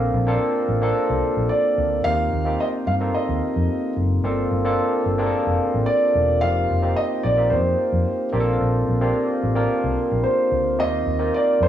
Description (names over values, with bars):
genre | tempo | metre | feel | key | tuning
pop | 110 BPM | 4/4 | straight | Bb major | A4 = 440 Hz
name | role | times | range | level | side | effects
barky tine electric piano | accompaniment | 0.0-11.7 s | Bb3 to Bb4 | -22 LUFS | equal | overdrive, lush chorus, cassette tape, plate reverb
vintage muted fingered electric bass | bass | 0.0-11.7 s | E1 to G2 | -23 LUFS | equal | none
dark concert grand piano | melody | 1.5-11.7 s | C5 to F5 | -22 LUFS | right 1 dB | plate reverb, tape echo
room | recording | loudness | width
moderate small room reverb, RT60 0.5 s | home recording on cassette | -18 LUFS | side -10 dB against mid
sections
0.0-11.7 A section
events
none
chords
0.0 Bbmaj9; 2.1 Eb69; 4.2 Gm11; 6.4 F7sus4; 8.3 Bbmaj9; 10.8 Eb69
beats
0.41 0.96 1.51 | 2.05 2.60 3.14 3.69 | 4.24 4.78 5.33 5.87 | 6.42 6.97 7.51 8.06 | 8.60 9.15 9.70 10.24 | 10.79 11.34